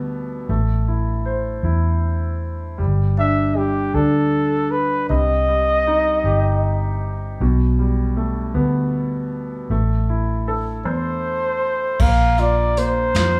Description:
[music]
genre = six-eight pop ballad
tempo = 52 BPM (dotted quarters)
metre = 6/8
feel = straight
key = G major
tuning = A4 = 441 Hz
[part]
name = clear concert grand piano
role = accompaniment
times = 0.0-13.4 s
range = B2 to C5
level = -26 LUFS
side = equal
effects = none
[part]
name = vintage muted fingered electric bass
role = bass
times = 0.0-13.4 s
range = G1 to F2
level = -23 LUFS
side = equal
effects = none
[part]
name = mellow flugelhorn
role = melody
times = 3.2-7.0, 10.9-13.4 s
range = G4 to F5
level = -22 LUFS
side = equal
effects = none
[part]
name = soft brush drum kit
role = drums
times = 12.0-13.3 s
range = crash cymbal, hi-hat, kick drum, snare drum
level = -25 LUFS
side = equal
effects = none
[sound]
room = light reverb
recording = band playing live in one room, studio reverb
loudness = -20 LUFS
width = mono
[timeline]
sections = 0.0-12.0 A section; 12.0-13.4 B section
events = none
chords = 0.5 Am; 2.8 Gsus2; 5.1 Cm; 7.4 Gadd9/B; 9.7 Am; 12.0 Bb5

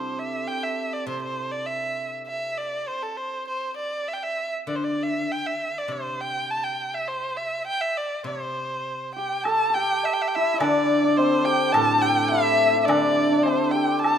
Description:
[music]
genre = chinese traditional, Chinese chamber ensemble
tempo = 98-106 BPM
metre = 2/4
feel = rubato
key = C gong mode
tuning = A4 = 440 Hz
[part]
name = rich erhu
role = melody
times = 0.0-14.2 s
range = A4 to A5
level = -25 LUFS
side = right 1 dB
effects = none
[part]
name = hammered dulcimer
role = second line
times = 0.0-2.7, 9.2-14.2 s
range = C4 to A4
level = -26 LUFS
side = right 4 dB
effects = none
[part]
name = guzheng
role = accompaniment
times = 0.0-14.2 s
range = A2 to C4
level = -27 LUFS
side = left 2 dB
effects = none
[part]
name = mellow hollow low xiao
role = second line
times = 9.2-14.2 s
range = C5 to A5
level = -25 LUFS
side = left 6 dB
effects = none
[part]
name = woodblock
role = percussion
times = 9.5-14.2 s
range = none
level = -31 LUFS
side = equal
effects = none
[sound]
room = moderate recital hall reverb, RT60 1.7 s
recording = minimal, uncompressed stereo recording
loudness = -22 LUFS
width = side -8 dB against mid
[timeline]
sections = 0.0-9.5 A section; 9.5-14.2 B section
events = none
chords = none

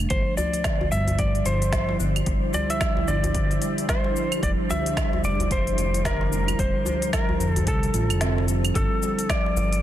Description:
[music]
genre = organic downtempo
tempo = 111 BPM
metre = 4/4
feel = swing 60% on 16ths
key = unclear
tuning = A4 = 442 Hz
[part]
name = smooth synth bass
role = bass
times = 0.0-9.8 s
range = F1 to C2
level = -25 LUFS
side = equal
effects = sidechain pumping
[part]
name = organic electronic drum kit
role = drums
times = 0.0-9.8 s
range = cabasa, claves, hi-hat, snare drum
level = -31 LUFS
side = equal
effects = overdrive
[part]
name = electric slide guitar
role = melody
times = 0.1-9.8 s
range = A4 to E5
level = -28 LUFS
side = left 1 dB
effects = vintage 12-bit sampler grit, ping-pong delay
[part]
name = ethereal airy pad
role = sustained chords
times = 1.2-8.8 s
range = G3 to C5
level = -33 LUFS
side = right 1 dB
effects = ensemble chorus, built-in reverb, sidechain pumping
[part]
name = marimba with soft mallets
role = arpeggios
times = 0.1-9.7 s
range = D3 to F4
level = -29 LUFS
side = equal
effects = tape echo
[part]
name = electronic kick drum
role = drums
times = 0.1-9.4 s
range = none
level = -27 LUFS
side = equal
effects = overdrive
[part]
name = djembe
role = percussion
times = 0.4-9.5 s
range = none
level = -33 LUFS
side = left 1 dB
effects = none
[sound]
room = light reverb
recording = dense, heavily limited modern master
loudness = -21 LUFS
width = side -12 dB against mid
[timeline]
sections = 0.0-8.8 A section; 8.8-9.8 B section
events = kick drops out 8.2-8.8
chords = 0.1 G5; 4.4 Fmaj7(no3); 8.8 Gsus2

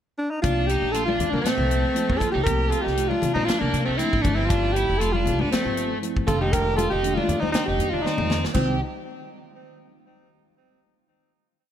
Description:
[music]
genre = electric jazz fusion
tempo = 118 BPM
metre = 4/4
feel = swing 55% on 16ths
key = C dorian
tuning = A4 = 436 Hz
[part]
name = clear alto saxophone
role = melody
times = 0.2-8.8 s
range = C4 to Bb4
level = -25 LUFS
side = equal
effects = ping-pong delay
[part]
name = biting overdriven guitar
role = second line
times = 0.4-8.8 s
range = A3 to G4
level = -28 LUFS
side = equal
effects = spring reverb
[part]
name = mellow tine electric piano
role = accompaniment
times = 0.4-8.8 s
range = Bb2 to D5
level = -31 LUFS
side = right 1 dB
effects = medium stereo tremolo, lush chorus
[part]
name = upright bass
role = bass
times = 0.4-8.8 s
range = F1 to C3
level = -27 LUFS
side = equal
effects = none
[part]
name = tight funk drum kit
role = drums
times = 0.4-8.7 s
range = crash cymbal, hi-hat, kick drum, snare drum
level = -28 LUFS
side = equal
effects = gated reverb
[part]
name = congas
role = percussion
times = 1.1-8.8 s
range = none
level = -31 LUFS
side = left 5 dB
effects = none
[sound]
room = light reverb, small room ambience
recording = bright 1980s-style digital production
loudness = -20 LUFS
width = side -10 dB against mid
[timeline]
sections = 0.0-0.4 pickup bar; 0.4-8.6 A section; 8.6-10.6 final chord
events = drum fill 8.0-8.6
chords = 0.4 C13sus4; 4.2 G13sus4; 6.3 F13sus4; 8.6 Cm

